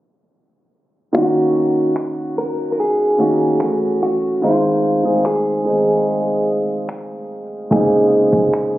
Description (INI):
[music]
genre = contemporary R&B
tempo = 73 BPM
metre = 4/4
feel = straight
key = unclear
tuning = A4 = 440 Hz
[part]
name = direct-recorded clean electric guitar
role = melody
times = 1.1-8.8 s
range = F4 to Bb4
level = -19 LUFS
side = equal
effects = tape echo
[part]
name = warm grand piano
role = accompaniment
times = 1.1-8.8 s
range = C3 to Ab4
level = -17 LUFS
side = right 1 dB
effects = none
[part]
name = smooth R&B drum kit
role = drums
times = 2.0-8.7 s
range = finger snaps, kick drum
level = -22 LUFS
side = equal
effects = none
[sound]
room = little or no reverb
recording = recorded on a phone in the room, club reverb, low-pass filter, nothing above 8.0 kHz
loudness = -14 LUFS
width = side -15 dB against mid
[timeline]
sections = 1.1-8.8 A section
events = none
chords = 1.1 Gb6; 3.6 Gbm7; 4.4 Fm7; 7.7 Bbm11